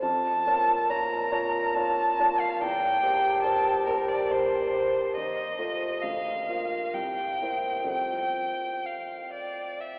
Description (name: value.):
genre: classical, romantic duo for violin and grand piano.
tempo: 61-72 BPM.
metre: 3/4.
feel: rubato.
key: F major.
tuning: A4 = 440 Hz.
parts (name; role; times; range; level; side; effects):
rich violin; melody; 0.0-10.0 s; Bb4 to Bb5; -26 LUFS; equal; none.
dark baby grand piano; accompaniment; 0.0-10.0 s; C2 to F5; -30 LUFS; equal; none.
room: wet cathedral reverb, RT60 5.1 s.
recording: heard from further back in the room, telephone sound.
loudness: -24 LUFS.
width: side -33 dB against mid.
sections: 0.0-10.0 A section.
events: none.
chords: 0.0 Bbm/F; 2.6 C7/E; 5.2 F7/Eb; 6.0 Bb/D; 6.9 C7; 7.9 F.